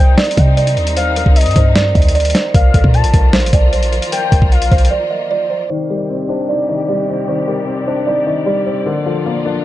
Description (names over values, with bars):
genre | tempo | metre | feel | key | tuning
hip hop, trap | 152 BPM | 4/4 | half-time | C dorian | A4 = 442 Hz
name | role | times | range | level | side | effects
kalimba | melody | 0.0-9.6 s | A4 to Eb5 | -19 LUFS | right 3 dB | low-pass filter
gliding portamento lead | second line | 0.0-4.9 s | Eb5 to A5 | -22 LUFS | left 6 dB | chorus, tape echo
clear symphonic string section | sustained chords | 0.0-9.6 s | Bb2 to D5 | -25 LUFS | equal | low-pass filter
clean 808-style bass | bass | 0.0-4.9 s | A1 to C3 | -14 LUFS | equal | none
boom bap sampler-style drum kit | drums | 0.2-4.9 s | hi-hat, kick drum, snare drum | -12 LUFS | equal | none
felt-muted upright piano | accompaniment | 5.7-9.6 s | D3 to Eb4 | -18 LUFS | left 5 dB | low-pass filter
room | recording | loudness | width
little or no reverb | dark, warm production, nothing above 10.6 kHz | -12 LUFS | side -14 dB against mid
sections
0.0-5.7 A section; 5.7-9.6 B section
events
break 4.9-5.7; filter sweep 5.7-9.6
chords
0.0 Cmadd9; 2.5 Bb5; 5.7 Cmadd9; 8.9 Bb